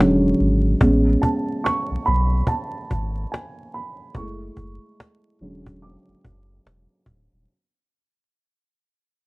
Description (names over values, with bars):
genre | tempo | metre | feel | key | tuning
lo-fi hip hop | 72 BPM | 4/4 | swing 61% on 16ths | A major | A4 = 440 Hz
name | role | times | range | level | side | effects
felt-muted upright piano | accompaniment | 0.0-7.5 s | D3 to D6 | -20 LUFS | right 1 dB | low-pass filter
warm sub bass | bass | 0.0-7.5 s | D1 to B1 | -21 LUFS | equal | none
cajon | drums | 0.0-7.4 s | none | -23 LUFS | equal | vintage 12-bit sampler grit
room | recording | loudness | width
light reverb | vinyl crackle | -18 LUFS | side -23 dB against mid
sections
0.0-7.5 A section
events
fade-out 0.0-7.5; felt piano solo 0.0-7.5; filter sweep on felt piano 0.0-7.5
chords
0.0 E13; 0.8 Amaj9; 4.1 F#m9; 5.4 E13